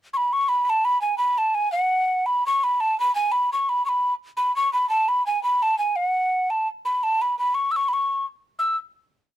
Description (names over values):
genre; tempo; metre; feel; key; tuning
celtic folk, Celtic jig; 114 BPM (dotted quarters); 6/8; straight; unclear; A4 = 440 Hz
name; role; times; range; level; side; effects
mellow hollow mid whistle; solo; 0.1-8.8 s; F#5 to E6; -20 LUFS; equal; none
room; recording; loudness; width
little or no reverb; close, detailed microphones; -20 LUFS; side -13 dB against mid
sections
0.1-8.6 A section; 8.6-9.4 final note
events
none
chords
none